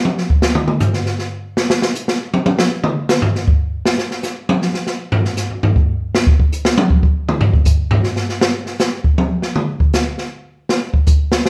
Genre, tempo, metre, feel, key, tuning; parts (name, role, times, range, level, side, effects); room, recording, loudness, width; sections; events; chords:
jazz; 158 BPM; 3/4; swing 64% on 8ths
open jazz drum kit; drums; 0.1-11.5 s; hi-hat, kick drum, snare drum, toms; -16 LUFS; equal
wet large studio reverb, RT60 0.8 s; band playing live in one room; -17 LUFS; mono
0.0-8.4 A section; 8.4-11.5 A section
drum solo 0.0-8.4, 8.4-11.5